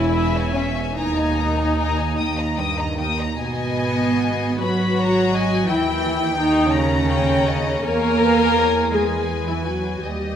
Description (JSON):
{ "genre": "classical, slow romantic movement for string orchestra", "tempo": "47-59 BPM (dotted quarters)", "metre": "6/8", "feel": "rubato", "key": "G# minor", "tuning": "A4 = 439 Hz", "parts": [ { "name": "rich studio violin section", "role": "melody", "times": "0.0-10.4 s", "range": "D#5 to D#6", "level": "-28 LUFS", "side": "left 5 dB", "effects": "none" }, { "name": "warm studio violin section", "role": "second line", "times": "0.0-10.4 s", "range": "A#4 to A#5", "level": "-28 LUFS", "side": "left 3 dB", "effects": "none" }, { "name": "dark chamber viola section", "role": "accompaniment", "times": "0.0-10.4 s", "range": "B3 to A#4", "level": "-21 LUFS", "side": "left 1 dB", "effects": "none" }, { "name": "dark symphonic double bass section", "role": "bass", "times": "0.0-10.4 s", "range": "E1 to E2", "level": "-25 LUFS", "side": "right 3 dB", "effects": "none" }, { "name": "warm symphonic cello section", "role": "bass", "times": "0.0-10.4 s", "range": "D#2 to A#3", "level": "-24 LUFS", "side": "right 3 dB", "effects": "none" } ], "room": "moderate scoring stage reverb, RT60 1.5 s", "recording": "none", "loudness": "-18 LUFS", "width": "side -9 dB against mid", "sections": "0.0-3.4 A section; 3.4-10.4 B section", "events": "none", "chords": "0.0 C#m/E; 1.0 D#sus4; 2.2 D#; 3.4 G#m; 5.7 D#7b9; 7.8 E" }